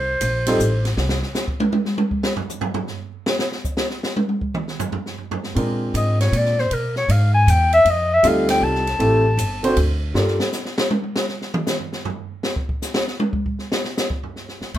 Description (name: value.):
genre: jazz, small-group swing and bop.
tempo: 157 BPM.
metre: 3/4.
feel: swing 66% on 8ths.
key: F mixolydian.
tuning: A4 = 440 Hz.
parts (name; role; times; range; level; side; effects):
breathy clarinet; melody; 0.0-1.0, 6.0-9.8, 14.8 s; Bb4 to A5; -19 LUFS; left 2 dB; none.
upright bass; bass; 0.0-1.2, 5.6-10.4, 14.6-14.8 s; G1 to B2; -20 LUFS; equal; none.
open jazz drum kit; drums; 0.2-14.8 s; crash cymbal, hi-hat, kick drum, ride cymbal, snare drum, toms; -23 LUFS; right 1 dB; none.
warm grand piano; accompaniment; 0.5-0.6, 5.5-10.4 s; G3 to C5; -21 LUFS; right 1 dB; none.
room: moderate club reverb, RT60 0.7 s.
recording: minimal, uncompressed stereo recording.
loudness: -18 LUFS.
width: side -12 dB against mid.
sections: 1.0-14.7 A section.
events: clarinet solo 0.0-14.7; drum solo 1.0-5.6, 10.1-14.7.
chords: 0.0 F (rootless); 1.0 N.C.; 5.6 Bb7; 6.7 E; 7.9 F7; 9.0 Am7; 9.8 N.C.; 10.1 Gm7; 11.3 N.C..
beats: 0.21 0.59 | 0.98 1.36 1.74 | 2.12 2.50 2.88 | 3.27 3.65 4.03 | 4.41 4.79 5.18 | 5.56 5.94 6.32 | 6.71 7.09 7.47 | 7.85 8.23 8.62 | 9.00 9.38 9.76 | 10.15 10.53 10.91 | 11.29 11.68 12.06 | 12.44 12.82 13.21 | 13.59 13.97 14.36 | 14.74.